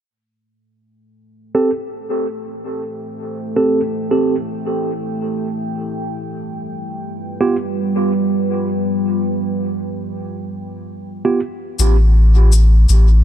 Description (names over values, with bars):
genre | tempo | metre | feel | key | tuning
ambient dub | 82 BPM | 4/4 | straight | A minor | A4 = 439 Hz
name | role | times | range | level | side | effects
deep dark ambient pad | sustained chords | 2.0-13.2 s | G3 to G5 | -22 LUFS | right 1 dB | chorus, built-in reverb
mellow tine electric piano | stabs | 1.5-11.4 s | B3 to A4 | -20 LUFS | right 2 dB | low-pass filter, dub echo
soft dub sub bass | bass | 11.8-13.2 s | A1 | -10 LUFS | equal | none
cabasa | drums | 11.8-13.0 s | none | -24 LUFS | left 8 dB | overdrive, dub echo
room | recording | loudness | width
light reverb, digital ambience | none | -16 LUFS | side -10 dB against mid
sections
0.1-11.8 A section; 11.8-13.2 B section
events
fade-in on ambient pad 0.1-11.8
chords
0.1 Am7; 5.9 G7; 11.8 Am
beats
| 0.09 0.82 1.55 2.28 | 3.02 3.75 4.48 5.21 | 5.94 6.67 7.41 8.14 | 8.87 9.60 10.33 11.06 | 11.80 12.53